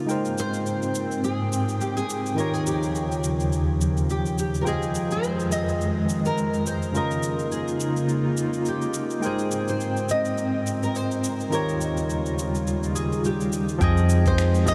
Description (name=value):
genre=sunset chillout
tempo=105 BPM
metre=4/4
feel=swing 57% on 16ths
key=F minor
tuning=A4 = 440 Hz
part: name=barky tine electric piano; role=accompaniment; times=0.0-14.7 s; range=Db3 to G5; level=-30 LUFS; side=equal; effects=analog delay
part: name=airy breathy pad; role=sustained chords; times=0.0-14.7 s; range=Eb2 to G5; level=-29 LUFS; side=equal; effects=chorus, tremolo
part: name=electronic cabasa and finger snaps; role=drums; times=0.1-14.7 s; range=none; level=-39 LUFS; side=equal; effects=small room ambience
part: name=nylon-string guitar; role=melody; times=0.4-14.7 s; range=G4 to Eb5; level=-32 LUFS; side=equal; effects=subtle chorus, analog delay
part: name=woody fretless electric bass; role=bass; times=13.8-14.7 s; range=F2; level=-22 LUFS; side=equal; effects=ensemble chorus
part: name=electronic kick drum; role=drums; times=13.8-14.7 s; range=none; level=-28 LUFS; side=equal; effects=small room ambience
room=wet huge ambient reverb, RT60 7.9 s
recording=dreamy mix soaked in reverb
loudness=-25 LUFS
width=mono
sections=0.0-13.8 A section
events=none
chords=0.1 Abmaj7; 2.4 Eb9; 4.7 Fm7; 7.0 Db69; 9.2 Abmaj7; 11.5 Eb9; 13.8 Fm7